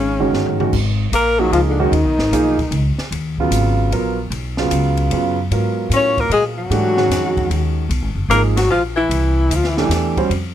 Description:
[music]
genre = modal jazz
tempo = 150 BPM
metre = 3/4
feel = swing 66% on 8ths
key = G# dorian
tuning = A4 = 440 Hz
[part]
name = breathy alto saxophone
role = melody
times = 0.0-3.0, 6.0-9.9 s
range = C#4 to C#5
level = -18 LUFS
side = equal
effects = plate reverb
[part]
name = warm tenor saxophone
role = second line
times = 0.0-3.0, 5.9-9.9 s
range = Db3 to C#4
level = -23 LUFS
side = left 8 dB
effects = none
[part]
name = upright bass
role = bass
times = 0.0-10.5 s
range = F#1 to A#2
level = -19 LUFS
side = equal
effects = none
[part]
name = warm grand piano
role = accompaniment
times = 0.2-10.3 s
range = C#3 to C5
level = -20 LUFS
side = right 4 dB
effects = none
[part]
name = open jazz drum kit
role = drums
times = 0.3-10.4 s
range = crash cymbal, hi-hat, kick drum, ride cymbal, snare drum, toms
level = -27 LUFS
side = left 1 dB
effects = none
[sound]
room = light reverb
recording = close, detailed microphones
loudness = -15 LUFS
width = side -11 dB against mid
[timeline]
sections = 0.7-10.3 A section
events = drum fill 0.3-0.7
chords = 0.0 Ab7sus4; 0.7 G#m11; 9.1 C69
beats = 0.33 | 0.73 1.12 1.52 | 1.92 2.32 2.72 | 3.12 3.52 3.92 | 4.32 4.71 5.11 | 5.51 5.91 6.31 | 6.71 7.11 7.51 | 7.91 8.31 8.71 | 9.11 9.51 9.91 | 10.31

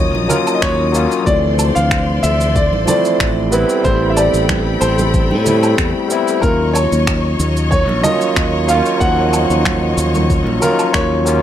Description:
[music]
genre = sunset chillout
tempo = 93 BPM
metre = 4/4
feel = straight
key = unclear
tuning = A4 = 438 Hz
[part]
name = bright concert grand piano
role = melody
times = 0.0-11.4 s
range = Bb4 to Gb5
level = -19 LUFS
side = equal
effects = tape echo
[part]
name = overdriven tine electric piano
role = accompaniment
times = 0.0-11.4 s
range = E3 to F4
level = -18 LUFS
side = moving between left 5 dB and right 5 dB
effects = auto-pan, tape echo
[part]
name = rich studio string section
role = sustained chords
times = 0.0-11.4 s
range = D3 to Eb6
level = -23 LUFS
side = left 3 dB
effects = none
[part]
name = modern bright fingered electric bass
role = bass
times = 0.0-11.4 s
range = A1 to A2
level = -17 LUFS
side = equal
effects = none
[part]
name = downlifter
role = sound effects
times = 0.0-1.3 s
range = none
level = barely audible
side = none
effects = none
[part]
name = congas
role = percussion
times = 0.1-10.8 s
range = none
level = -23 LUFS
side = right 4 dB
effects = none
[part]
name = electronic shaker, woodblock and finger snaps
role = drums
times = 0.3-11.4 s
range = none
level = -22 LUFS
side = right 1 dB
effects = overdrive
[part]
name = electronic kick drum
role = drums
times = 0.6-11.1 s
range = none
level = -19 LUFS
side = equal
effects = overdrive
[sound]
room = light reverb, digital ambience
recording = none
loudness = -12 LUFS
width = side -10 dB against mid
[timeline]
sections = 0.0-11.4 A section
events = none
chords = 0.0 Ebm9; 1.3 Dm9; 3.5 Am9; 6.4 Ebm9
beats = 0.62 | 1.27 1.91 2.56 3.20 | 3.85 4.49 5.14 5.78 | 6.43 7.07 7.72 8.37 | 9.01 9.65 10.30 10.95

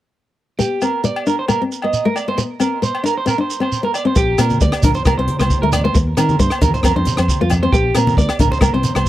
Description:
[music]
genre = highlife guitar band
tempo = 135 BPM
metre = 4/4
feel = swing 53% on 16ths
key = Bb major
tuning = A4 = 441 Hz
[part]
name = nylon-string guitar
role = accompaniment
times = 0.6-9.1 s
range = A3 to D4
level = -20 LUFS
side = left 4 dB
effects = none
[part]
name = electric guitar at the edge of break-up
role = arpeggios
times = 0.6-9.1 s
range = F4 to Eb5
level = -20 LUFS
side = right 4 dB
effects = tape echo
[part]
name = shekere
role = percussion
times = 0.6-9.1 s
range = none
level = -24 LUFS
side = right 4 dB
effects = none
[part]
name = agogo bells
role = percussion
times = 0.8-9.1 s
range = none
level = -28 LUFS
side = left 5 dB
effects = none
[part]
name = fingered electric bass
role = bass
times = 4.2-9.0 s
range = Bb1 to Eb3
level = -19 LUFS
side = equal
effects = none
[part]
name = compact cocktail drum kit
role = drums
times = 4.2-9.1 s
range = hi-hat, kick drum, rim click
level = -18 LUFS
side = equal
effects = none
[part]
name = congas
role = percussion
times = 4.5-9.1 s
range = none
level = -23 LUFS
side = equal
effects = none
[sound]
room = little or no reverb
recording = dry, close 1970s-style studio recording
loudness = -14 LUFS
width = side -14 dB against mid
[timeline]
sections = 0.6-4.2 A section; 4.2-9.1 B section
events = none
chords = 0.6 Bb6; 1.5 Cm7; 2.4 Bbadd9; 4.2 Bb6; 5.1 Bbmaj9/C; 5.9 Eb5; 6.8 F5; 7.7 Bb6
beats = | 0.59 1.04 1.49 1.93 | 2.38 2.83 3.27 3.72 | 4.17 4.61 5.06 5.50 | 5.95 6.39 6.84 7.29 | 7.73 8.18 8.62 9.07

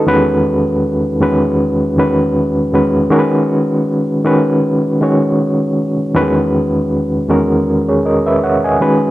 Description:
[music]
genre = R&B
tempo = 79 BPM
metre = 4/4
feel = swing 55% on 16ths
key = unclear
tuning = A4 = 440 Hz
[part]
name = overdriven reed electric piano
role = solo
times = 0.0-9.1 s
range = E2 to G#5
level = -12 LUFS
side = equal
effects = fast tremolo
[sound]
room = wet studio reverb, RT60 0.8 s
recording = none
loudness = -12 LUFS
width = side -16 dB against mid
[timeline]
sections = 0.0-9.1 A section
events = none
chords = 0.1 Emaj9; 3.1 G#m7; 6.1 Emaj9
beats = | 0.06 0.82 1.58 2.34 | 3.10 3.86 4.62 5.38 | 6.14 6.90 7.66 8.42

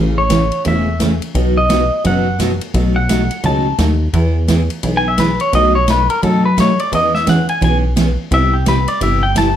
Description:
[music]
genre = country, western swing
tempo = 172 BPM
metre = 4/4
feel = swing 62% on 8ths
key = E major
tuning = A4 = 439 Hz
[part]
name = picked steel-string acoustic guitar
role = accompaniment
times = 0.0-9.5 s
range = B2 to G#4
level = -18 LUFS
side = right 2 dB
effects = none
[part]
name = plucky analog bass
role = bass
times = 0.0-9.6 s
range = E1 to F#2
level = -16 LUFS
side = left 1 dB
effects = none
[part]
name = pedal steel guitar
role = melody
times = 0.2-9.6 s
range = G4 to A5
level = -16 LUFS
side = left 1 dB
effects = plate reverb
[part]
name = swinging big-band drum kit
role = drums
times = 0.3-9.5 s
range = hi-hat, kick drum, ride cymbal, snare drum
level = -23 LUFS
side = equal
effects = none
[sound]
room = moderate club reverb, RT60 0.6 s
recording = none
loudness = -12 LUFS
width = side -10 dB against mid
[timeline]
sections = 0.0-9.6 A section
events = pedal steel guitar solo 0.0-9.6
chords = 0.0 Amaj7; 1.3 B; 2.7 B7; 4.1 E; 5.5 B7; 6.9 E6; 8.3 Cmaj7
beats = 0.30 0.65 1.00 | 1.35 1.70 2.04 2.39 | 2.74 3.09 3.44 3.79 | 4.14 4.49 4.83 5.18 | 5.53 5.88 6.23 6.57 | 6.92 7.27 7.62 7.96 | 8.31 8.66 9.01 9.36

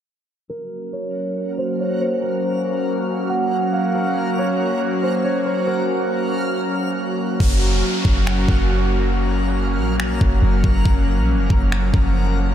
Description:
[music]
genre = hip hop, atmospheric cloud-rap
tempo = 139 BPM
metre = 4/4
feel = half-time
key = Gb lydian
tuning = A4 = 441 Hz
[part]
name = concert harp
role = melody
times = 0.5-7.8 s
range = Bb4 to Gb5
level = -24 LUFS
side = equal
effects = low-pass filter, ping-pong delay
[part]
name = airy breathy pad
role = sustained chords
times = 0.7-12.5 s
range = F3 to Gb4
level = -22 LUFS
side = equal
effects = chorus, sidechain pumping, low-pass filter
[part]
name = backwards swelling texture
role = texture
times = 0.5-12.5 s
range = Bb4 to Gb6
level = -30 LUFS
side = equal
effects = built-in reverb, lush chorus
[part]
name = clean 808-style bass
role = bass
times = 7.4-12.5 s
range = F1 to Bb1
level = -19 LUFS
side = equal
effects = none
[part]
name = trap drum kit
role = drums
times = 7.4-12.0 s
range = crash cymbal, finger snaps, kick drum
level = -21 LUFS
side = equal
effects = none
[part]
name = downlifter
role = sound effects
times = 7.4-10.9 s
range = none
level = -30 LUFS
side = equal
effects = none
[sound]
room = moderate huge ambient reverb, RT60 8.3 s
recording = dreamy mix soaked in reverb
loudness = -17 LUFS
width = side -10 dB against mid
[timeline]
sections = 0.5-7.4 A section; 7.4-12.5 B section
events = filter sweep 0.5-7.4; hi-hats muted 7.4-12.5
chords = 0.5 Gbmaj7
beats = | 0.49 0.93 1.36 1.79 | 2.22 2.65 3.08 3.52 | 3.95 4.38 4.81 5.24 | 5.67 6.11 6.54 6.97 | 7.40 7.83 8.27 8.70 | 9.13 9.56 9.99 10.42 | 10.86 11.29 11.72 12.15

